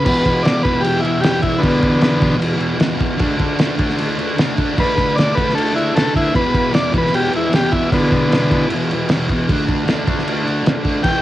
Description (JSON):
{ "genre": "garage rock duo or trio", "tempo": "153 BPM", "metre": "4/4", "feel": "straight", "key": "unclear", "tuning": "A4 = 440 Hz", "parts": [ { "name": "combo organ", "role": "melody", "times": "0.0-2.4, 4.8-11.2 s", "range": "D3 to G5", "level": "-17 LUFS", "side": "left 1 dB", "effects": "cassette tape" }, { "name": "thick fuzz guitar", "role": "riff", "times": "0.0-11.2 s", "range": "E2 to D4", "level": "-19 LUFS", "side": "equal", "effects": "distortion, cassette tape" }, { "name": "cloth-damped thuddy drum kit", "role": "drums", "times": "0.1-11.1 s", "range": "crash cymbal, kick drum, snare drum", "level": "-18 LUFS", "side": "equal", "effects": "cassette tape" } ], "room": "light reverb", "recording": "home recording on cassette", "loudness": "-14 LUFS", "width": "side -14 dB against mid", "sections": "0.0-11.2 A section", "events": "none", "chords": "0.0 E5; 3.2 D5; 6.3 E5; 9.5 D5" }